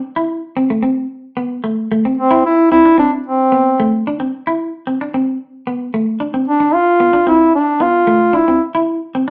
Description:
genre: highlife.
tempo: 112 BPM.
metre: 4/4.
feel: straight.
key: C major.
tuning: A4 = 440 Hz.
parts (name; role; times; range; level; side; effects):
clean electric guitar; accompaniment; 0.2-9.3 s; A3 to E4; -20 LUFS; equal; none.
mellow duduk; melody; 2.2-8.6 s; C4 to F4; -13 LUFS; equal; none.
room: wet studio reverb, RT60 0.7 s.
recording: none.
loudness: -15 LUFS.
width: mono.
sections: 0.0-9.3 A section.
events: none.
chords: 0.0 Amadd9; 2.2 Cmaj7; 6.5 Dm13; 8.6 Am (rootless).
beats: | 0.04 0.57 1.11 1.65 | 2.18 2.72 3.26 3.79 | 4.33 4.86 5.40 5.93 | 6.47 7.01 7.54 8.08 | 8.61 9.15.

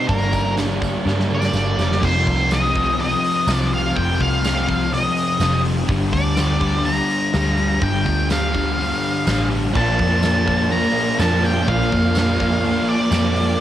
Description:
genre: rock, shoegaze and dream pop.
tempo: 124 BPM.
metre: 4/4.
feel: straight.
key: unclear.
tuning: A4 = 440 Hz.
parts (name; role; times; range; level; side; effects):
octave-fuzz lead guitar; melody; 0.0-13.6 s; Bb4 to Bb5; -22 LUFS; equal; distortion, cassette tape, analog delay.
biting overdriven guitar; riff; 0.0-2.0, 9.7-13.6 s; G2 to D4; -24 LUFS; right 6 dB; reverse reverb, cassette tape.
thick fuzz guitar; riff; 0.0-13.6 s; F2 to Bb3; -24 LUFS; left 7 dB; distortion, lush chorus, cassette tape.
vintage muted picked electric bass; bass; 0.1-13.6 s; F1 to G2; -22 LUFS; equal; none.
huge arena drum kit; drums; 0.1-13.5 s; crash cymbal, hi-hat, kick drum, snare drum; -26 LUFS; equal; cassette tape.
tambourine; percussion; 0.1-13.2 s; none; -36 LUFS; right 7 dB; none.
crunchy overdriven guitar; riff; 2.0-13.6 s; F2 to Bb3; -24 LUFS; equal; cassette tape.
room: light reverb.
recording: home recording on cassette.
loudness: -16 LUFS.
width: side -12 dB against mid.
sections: 0.0-2.0 A section; 2.0-13.6 B section.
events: drum fill 1.1-2.0.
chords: 0.1 Gm; 2.0 F5; 5.9 Gm7; 9.7 Bbmaj7.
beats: | 0.09 0.57 1.06 1.54 | 2.03 2.51 2.99 3.48 | 3.96 4.44 4.92 5.41 | 5.89 6.37 6.85 7.33 | 7.82 8.30 8.78 9.26 | 9.75 10.23 10.71 11.19 | 11.68 12.16 12.64 13.12 | 13.60.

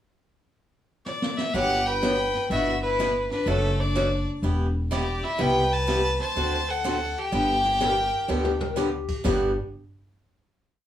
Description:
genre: country, western swing.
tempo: 125 BPM.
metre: 4/4.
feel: swing 66% on 8ths.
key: G major.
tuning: A4 = 439 Hz.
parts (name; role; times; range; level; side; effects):
clear fiddle; melody; 1.1-8.8 s; A4 to A5; -26 LUFS; left 2 dB; none.
jazz brush drum kit; drums; 1.1-9.4 s; brushed snare drum, crash cymbal, hi-hat, kick drum, snare drum, toms; -33 LUFS; equal; none.
clear fiddle; second line; 1.5-8.8 s; A3 to C5; -30 LUFS; right 1 dB; none.
picked swing-style acoustic guitar; accompaniment; 1.5-9.5 s; G2 to A4; -27 LUFS; right 1 dB; none.
upright bass; bass; 1.5-9.5 s; E1 to D2; -28 LUFS; equal; none.
clean lap steel guitar; second line; 7.8-9.5 s; G4 to Bb4; -29 LUFS; left 5 dB; none.
room: moderate studio ambience, RT60 0.5 s.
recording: small room ambience.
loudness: -22 LUFS.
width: side -11 dB against mid.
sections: 0.0-1.5 pickup bar; 1.5-9.2 A section; 9.2-10.9 final chord.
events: drum fill 1.1-1.5, 8.3-8.8.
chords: 0.0 N.C.; 1.5 Gmaj7; 2.5 Emadd9/G; 3.5 Bm7/F#; 4.4 Em; 5.4 Cmaj7; 6.4 D7; 7.3 G.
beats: 0.10 0.58 1.07 | 1.55 2.03 2.51 2.99 | 3.47 3.95 4.43 4.92 | 5.40 5.88 6.36 6.84 | 7.32 7.80 8.29 8.77 | 9.25.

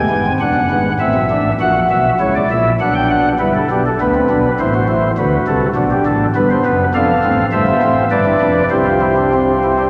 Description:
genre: classical, baroque-style 4-part fugue for pipe organ.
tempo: 101 BPM.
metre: 3/4.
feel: straight.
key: C major.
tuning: A4 = 440 Hz.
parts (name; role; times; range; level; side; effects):
pipe organ, flutes; solo; 0.0-9.9 s; E1 to G#5; -15 LUFS; equal; none.
room: wet cathedral reverb, RT60 4.6 s.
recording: none.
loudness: -15 LUFS.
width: mono.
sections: 0.0-9.9 A section.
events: none.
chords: 0.0 E7; 1.0 Am; 1.6 F#7/A#; 2.8 Bm; 3.4 Em7/G; 4.6 Am; 5.2 D; 6.4 G; 6.9 Dm7/F; 7.5 C/G; 8.1 G7; 8.7 C.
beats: 0.41 1.00 | 1.60 2.20 2.80 | 3.40 3.99 4.59 | 5.18 5.77 6.36 | 6.94 7.53 8.12 | 8.73 9.34.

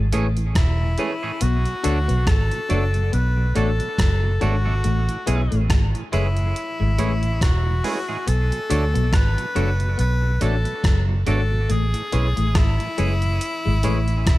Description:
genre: lovers rock reggae.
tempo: 70 BPM.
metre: 4/4.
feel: swing 57% on 16ths.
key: B dorian.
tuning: A4 = 439 Hz.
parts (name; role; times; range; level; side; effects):
mellow tonewheel organ; accompaniment; 0.0-14.2 s; A2 to D4; -34 LUFS; right 4 dB; chorus vibrato, slow rotary speaker, dub echo.
electric guitar through a small old amp; riff; 0.0-14.4 s; E3 to D4; -31 LUFS; left 7 dB; wide subtle chorus.
vintage muted fingered electric bass; bass; 0.0-14.4 s; E1 to D2; -20 LUFS; equal; none.
bell-like tine electric piano; accompaniment; 0.1-14.0 s; D4 to C#5; -32 LUFS; left 2 dB; medium stereo tremolo.
twangy electric guitar; stabs; 0.1-14.0 s; E3 to A4; -32 LUFS; right 5 dB; dub echo.
gated 80s digital drum machine; drums; 0.1-14.4 s; hi-hat, kick drum, rim click; -22 LUFS; equal; gated reverb.
edgy tenor saxophone; melody; 0.6-14.4 s; E4 to B4; -28 LUFS; left 2 dB; tape echo.
room: digital ambience.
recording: none.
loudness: -18 LUFS.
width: side -17 dB against mid.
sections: 0.0-14.4 A section.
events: none.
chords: 0.0 Amaj7; 1.4 Bm7; 4.8 Amaj7; 8.3 Bm7; 11.7 Amaj7.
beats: 0.55 | 1.41 2.27 3.13 3.98 | 4.84 5.70 6.55 7.41 | 8.27 9.12 9.98 10.84 | 11.70 12.55 13.41 14.27.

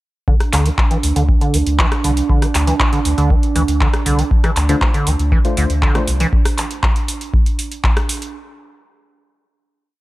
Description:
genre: acid house.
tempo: 119 BPM.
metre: 4/4.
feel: straight.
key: D minor.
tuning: A4 = 436 Hz.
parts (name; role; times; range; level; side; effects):
warm analog pad; sustained chords; 0.3-8.4 s; D4; -24 LUFS; right 7 dB; chorus, sidechain pumping.
acid bass, square; riff; 0.3-6.3 s; D3 to E3; -22 LUFS; equal; lush chorus, cassette tape, analog delay.
electronic kick drum; drums; 0.3-7.9 s; none; -16 LUFS; equal; overdrive.
electro analog drum machine; drums; 0.4-8.3 s; handclaps, hi-hat, rim click; -22 LUFS; equal; none.
warm sub bass; bass; 0.5-6.3 s; C2 to D2; -17 LUFS; equal; tube saturation, sidechain pumping.
deep mellow chord stab; stabs; 4.7-6.1 s; A3 to C5; -24 LUFS; left 4 dB; chorus, phaser, analog delay.
room: digital ambience.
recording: none.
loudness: -14 LUFS.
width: side -18 dB against mid.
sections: 0.3-8.3 groove.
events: filter sweep on acid bass 0.3-6.3.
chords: 0.3 D7(no3).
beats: | 0.28 0.78 1.29 1.79 | 2.29 2.80 3.30 3.81 | 4.31 4.82 5.32 5.83 | 6.33 6.83 7.34 7.84.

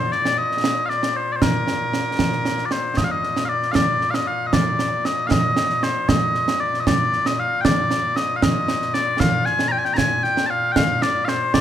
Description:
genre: scottish traditional, Scottish pipe music.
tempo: 77 BPM (dotted quarters).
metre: 6/8.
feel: straight.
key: Bb mixolydian.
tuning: A4 = 444 Hz.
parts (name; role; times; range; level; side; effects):
mellow small bagpipes; melody; 0.0-11.6 s; Bb2 to Bb5; -20 LUFS; left 2 dB; none.
concert snare drum and concert bass drum; drums; 0.1-11.6 s; none; -21 LUFS; right 2 dB; none.
room: light reverb.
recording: minimal, uncompressed stereo recording.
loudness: -18 LUFS.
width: side -10 dB against mid.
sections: 0.0-3.0 A section; 3.0-11.6 B section.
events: none.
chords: none.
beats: 0.63 | 1.41 2.19 | 2.97 3.75 | 4.53 5.31 | 6.09 6.87 | 7.65 8.43 | 9.21 9.98 | 10.76 11.54.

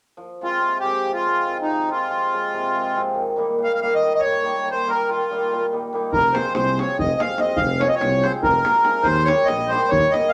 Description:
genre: balkan folk, Balkan wedding band.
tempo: free time.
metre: none.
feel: none.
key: F minor.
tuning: A4 = 440 Hz.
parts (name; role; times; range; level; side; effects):
cimbalom; accompaniment; 0.2-10.3 s; Bb2 to G4; -27 LUFS; equal; none.
accordion; melody; 0.4-10.3 s; Eb4 to F5; -22 LUFS; equal; none.
dark tuba; bass; 6.1-10.0 s; F1 to Eb2; -28 LUFS; equal; none.
davul; percussion; 6.1-10.3 s; none; -30 LUFS; equal; none.
room: wet studio reverb, RT60 0.8 s.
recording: none.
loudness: -20 LUFS.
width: mono.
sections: 0.2-6.1 A section; 6.1-10.3 B section.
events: none.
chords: 0.2 Fm; 3.1 Eb; 6.1 Fm; 9.1 Eb.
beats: free time.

